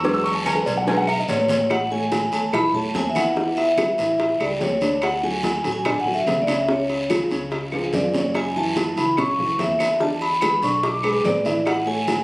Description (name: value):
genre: Afro-Cuban jazz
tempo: 145 BPM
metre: 4/4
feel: straight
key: A major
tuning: A4 = 440 Hz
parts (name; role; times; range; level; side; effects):
- dark baby grand piano; accompaniment; 0.0-12.2 s; C#3 to E6; -24 LUFS; equal; none
- upright bass; bass; 0.0-12.2 s; A1 to F#2; -32 LUFS; equal; none
- congas; percussion; 0.0-12.2 s; none; -35 LUFS; equal; none
- cowbell and bongos; percussion; 0.0-12.2 s; none; -28 LUFS; left 1 dB; none
- guiro; percussion; 0.0-12.2 s; none; -32 LUFS; equal; none
- agogo bells and timbales; percussion; 0.3-12.2 s; none; -29 LUFS; right 1 dB; none
- claves; percussion; 0.5-11.9 s; none; -32 LUFS; equal; none
- vibraphone with medium hard mallets; melody; 1.3-12.2 s; C#5 to D6; -22 LUFS; equal; none
room: moderate large studio reverb, RT60 0.8 s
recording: recorded on a phone in the room, studio reverb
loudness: -18 LUFS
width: side -22 dB against mid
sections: 0.0-1.7 A section; 1.7-12.2 B section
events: grand piano solo 0.0-1.7; drum fill 0.9-1.7, 7.7-8.3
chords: 0.0 E7; 1.7 A; 3.4 Em; 4.2 A7; 5.0 Dmaj7; 6.7 C#; 8.3 F#m7; 10.0 E7; 11.7 A6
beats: | 0.04 0.46 0.87 1.29 | 1.70 2.12 2.53 2.95 | 3.36 3.78 4.20 4.61 | 5.03 5.44 5.86 6.27 | 6.68 7.10 7.51 7.93 | 8.34 8.76 9.17 9.59 | 10.00 10.42 10.83 11.24 | 11.66 12.07